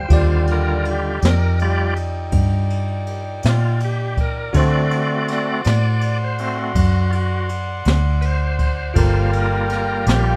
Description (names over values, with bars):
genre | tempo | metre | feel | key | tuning
slow blues | 54 BPM (dotted quarters) | 12/8 | straight | unclear | A4 = 440 Hz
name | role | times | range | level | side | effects
bell-like tine electric piano | accompaniment | 0.0-10.4 s | F4 to D5 | -31 LUFS | equal | none
bright horn section | sustained chords | 0.0-10.4 s | Eb4 to C6 | -30 LUFS | equal | none
bright tonewheel organ | sustained chords | 0.0-10.4 s | D3 to D5 | -26 LUFS | equal | slow rotary speaker
vintage muted fingered electric bass | bass | 0.0-10.4 s | G1 to D3 | -21 LUFS | equal | none
jazz brush drum kit | drums | 0.1-10.2 s | kick drum, ride cymbal, snare drum | -26 LUFS | equal | none
room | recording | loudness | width
light reverb | rough home demo mix | -19 LUFS | mono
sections
0.0-10.4 A section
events
tonewheel organ solo 0.0-10.4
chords
0.1 Ebmaj7; 4.5 D7; 9.0 Gm7